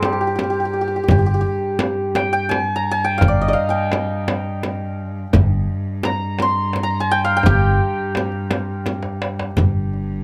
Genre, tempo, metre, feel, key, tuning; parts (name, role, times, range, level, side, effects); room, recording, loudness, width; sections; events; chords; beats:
Persian modal ensemble; 85 BPM; 3/4; straight; G dastgah shur; A4 = 439 Hz
santur; melody; 0.0-10.2 s; G4 to C6; -23 LUFS; equal
warm cello; drone; 0.0-10.2 s; G2; -28 LUFS; equal
frame drum; percussion; 0.0-9.7 s; -26 LUFS; equal
tombak; percussion; 0.0-10.0 s; -24 LUFS; equal
upright bass; bass; 1.1-10.2 s; G1; -21 LUFS; equal
light reverb; -19 LUFS; mono
0.0-9.6 A section
drum fill 8.9-9.6
0.40 | 1.10 1.81 2.51 | 3.22 3.93 4.63 | 5.34 6.04 6.75 | 7.46 8.16 8.87 | 9.58